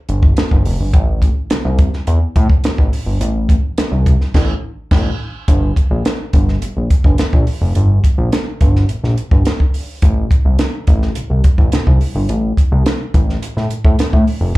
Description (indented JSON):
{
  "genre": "funk",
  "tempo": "106 BPM",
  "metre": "4/4",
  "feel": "straight",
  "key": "unclear",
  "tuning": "A4 = 440 Hz",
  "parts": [
    { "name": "fat analog bass", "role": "bass", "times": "0.1-14.6 s", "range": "F1 to A2", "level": "-14 LUFS", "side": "equal", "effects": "none" },
    { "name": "compact cocktail drum kit", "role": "drums", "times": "0.1-14.6 s", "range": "crash cymbal, hi-hat, kick drum, snare drum", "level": "-14 LUFS", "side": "equal", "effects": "none" }
  ],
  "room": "little or no reverb",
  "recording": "live gig heard through the venue's PA, club reverb",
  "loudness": "-12 LUFS",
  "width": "side -19 dB against mid",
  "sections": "0.0-5.5 A section; 5.5-14.6 B section",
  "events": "band accent 4.3-5.5",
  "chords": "none",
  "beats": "0.37 | 0.94 1.50 2.07 2.64 | 3.21 3.78 4.34 4.91 | 5.48 6.05 6.62 7.19 | 7.76 8.32 8.89 9.46 | 10.03 10.59 11.16 11.73 | 12.29 12.86 13.42 13.99 | 14.55"
}